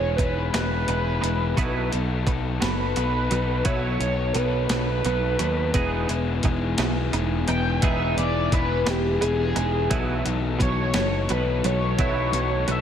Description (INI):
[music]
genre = indie rock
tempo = 58 BPM (dotted quarters)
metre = 6/8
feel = straight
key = E major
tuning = A4 = 440 Hz
[part]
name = overdriven synth lead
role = melody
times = 0.0-12.8 s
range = G4 to G5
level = -27 LUFS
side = equal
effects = distortion, phaser
[part]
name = crunchy overdriven guitar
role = riff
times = 0.0-12.8 s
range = F#3 to A4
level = -29 LUFS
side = left 7 dB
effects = slapback echo
[part]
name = twelve-string electric guitar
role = riff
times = 0.0-12.8 s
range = F#3 to G#4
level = -30 LUFS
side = right 5 dB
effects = ensemble chorus, slapback echo
[part]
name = modern bright picked electric bass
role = bass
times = 0.0-12.8 s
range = E1 to D#2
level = -26 LUFS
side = equal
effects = none
[part]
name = clean 12-bit digital drum machine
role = drums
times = 0.2-12.8 s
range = hi-hat, kick drum, snare drum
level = -27 LUFS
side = equal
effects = none
[part]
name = combo organ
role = sustained chords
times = 5.7-12.8 s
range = E3 to B3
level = -36 LUFS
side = right 1 dB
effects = none
[sound]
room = moderate lush hall reverb, RT60 2.6 s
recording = big arena sound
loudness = -21 LUFS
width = side -9 dB against mid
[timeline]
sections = 0.0-12.8 A section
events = analog synth lead solo 0.0-12.8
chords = 0.0 Emaj7; 1.6 B7sus4; 5.7 Emaj7; 9.9 B7sus4